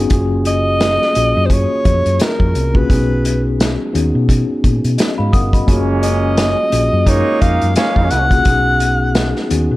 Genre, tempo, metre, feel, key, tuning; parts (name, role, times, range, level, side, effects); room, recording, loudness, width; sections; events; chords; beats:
lush 1970s-style soul; 86 BPM; 4/4; swing 58% on 16ths; F# major; A4 = 439 Hz
mellow tine electric piano; accompaniment; 0.0-9.8 s; A#3 to F#5; -20 LUFS; left 2 dB; medium stereo tremolo
hollow-body short-scale fingered electric bass; bass; 0.0-9.8 s; F#1 to B2; -17 LUFS; equal
vintage drum kit; drums; 0.1-9.7 s; hi-hat, kick drum, snare drum; -17 LUFS; equal
breathy alto saxophone; melody; 0.5-9.5 s; A#4 to F#5; -17 LUFS; equal
celesta; texture; 5.2-5.9 s; B5 to D#6; -26 LUFS; equal
clear trombone section; stabs; 5.7-8.3 s; G#3 to D#4; -20 LUFS; right 4 dB
small room ambience; dark, warm production; -12 LUFS; side -18 dB against mid
0.0-9.8 A section
0.1 F#maj9; 2.9 B6; 5.7 F#maj9; 8.5 B6
| 0.11 0.81 1.50 2.20 | 2.90 3.59 4.29 4.98 | 5.68 6.37 7.07 7.76 | 8.46 9.15